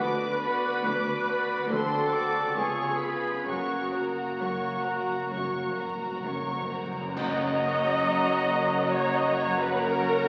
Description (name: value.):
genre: classical, slow romantic movement for symphony orchestra.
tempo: 64-71 BPM.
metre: 4/4.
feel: rubato.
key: F# major.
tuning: A4 = 439 Hz.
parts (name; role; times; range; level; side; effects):
rich studio violin section; melody; 0.0-10.3 s; A#5 to D6; -37 LUFS; equal; none.
clear studio violin section; second line; 0.0-10.3 s; D4 to D5; -38 LUFS; equal; none.
rich studio viola section; accompaniment; 0.0-10.3 s; F#4 to D#5; -32 LUFS; equal; none.
warm French horn section; sustained chords; 0.0-10.3 s; A#3 to F#4; -39 LUFS; equal; none.
concert harp; arpeggios; 0.0-10.3 s; F#2 to D5; -42 LUFS; equal; none.
dark trumpet section; stabs; 0.0-6.7 s; F#4 to B4; -32 LUFS; equal; none.
rich studio cello section; bass; 0.0-10.3 s; C#2 to F#2; -40 LUFS; equal; none.
rich studio double bass section; bass; 0.0-10.3 s; F#1 to D2; -43 LUFS; equal; none.
cymbal swell, clash cymbals and concert bass drum; percussion; 3.5-8.9 s; none; -44 LUFS; equal; none.
timpani; percussion; 3.5-8.5 s; F#2; -44 LUFS; equal; none.
clear oboe; second line; 7.2-10.3 s; F#5; -39 LUFS; equal; none.
dark clarinet; second line; 7.2-10.3 s; C#4; -42 LUFS; equal; none.
mellow concert flute; second line; 7.2-10.3 s; A#5; -38 LUFS; equal; none.
warm bassoon; accompaniment; 7.2-10.3 s; F#3; -36 LUFS; equal; none.
room: wet concert hall reverb, RT60 2.4 s.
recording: very old 78 rpm record, vinyl crackle.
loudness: -28 LUFS.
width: mono.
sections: 0.0-7.2 A section; 7.2-10.3 B section.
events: timpani fill 3.5-7.2; band accent 7.2-8.1.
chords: 0.0 Bm/D; 1.7 D7; 2.6 C#7; 3.5 F#.